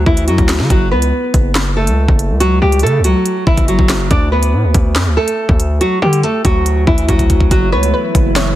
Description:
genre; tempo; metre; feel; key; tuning
hip hop, drill; 141 BPM; 4/4; half-time; F# phrygian; A4 = 441 Hz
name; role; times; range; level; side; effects
nylon-string guitar; melody; 0.0-8.3 s; E3 to D5; -16 LUFS; equal; low-pass filter, tape echo
distorted 808-style bass; bass; 0.0-8.6 s; F#1 to D3; -15 LUFS; equal; distortion
drill drum kit; drums; 0.1-8.5 s; handclaps, hi-hat, kick drum, snare drum; -14 LUFS; equal; none
warm analog pad; sustained chords; 7.5-8.6 s; E3 to E4; -20 LUFS; right 1 dB; chorus
glassy wavetable pluck; second line; 7.7-8.6 s; B4 to C#5; -20 LUFS; right 1 dB; chorus, tape echo
room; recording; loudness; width
digital ambience; heavily compressed radio sound; -11 LUFS; side -14 dB against mid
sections
0.0-8.6 A section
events
drum fill 7.1-7.5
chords
0.0 D; 0.7 F#m; 4.1 D; 7.5 F#m7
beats
0.28 | 0.70 1.13 1.55 1.98 | 2.40 2.83 3.26 3.68 | 4.11 4.53 4.96 5.38 | 5.81 6.23 6.66 7.08 | 7.51 7.94 8.36

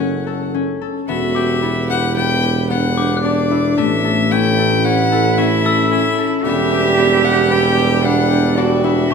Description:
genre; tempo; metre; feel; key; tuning
contemporary instrumental, chamber music in an uneven meter; 112 BPM; 5/4; straight; E dorian; A4 = 440 Hz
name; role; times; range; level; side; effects
rich violin; melody; 0.0-9.1 s; D5 to G5; -20 LUFS; left 4 dB; none
concert harp; arpeggios; 0.0-9.1 s; A3 to A4; -20 LUFS; left 6 dB; none
mellow tuba; bass; 0.0-9.1 s; E1 to A1; -19 LUFS; right 4 dB; none
warm cello; second line; 1.1-9.1 s; C#4 to G4; -19 LUFS; right 6 dB; none
glockenspiel with hard plastic mallets; texture; 1.3-9.1 s; D6 to F#6; -27 LUFS; left 6 dB; none
pedal harmonium; sustained chords; 6.4-9.1 s; E3 to E4; -23 LUFS; right 1 dB; none
room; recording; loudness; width
wet recital hall reverb, RT60 1.5 s; minimal, uncompressed stereo recording; -13 LUFS; side -5 dB against mid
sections
0.0-1.1 A section; 1.1-9.1 B section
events
none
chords
0.0 F#m; 1.1 Em9; 3.8 A7; 6.4 Em9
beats
0.54 | 1.09 1.63 2.17 2.71 3.24 | 3.78 4.32 4.85 5.38 5.91 | 6.45 6.98 7.51 8.04 8.58 | 9.11

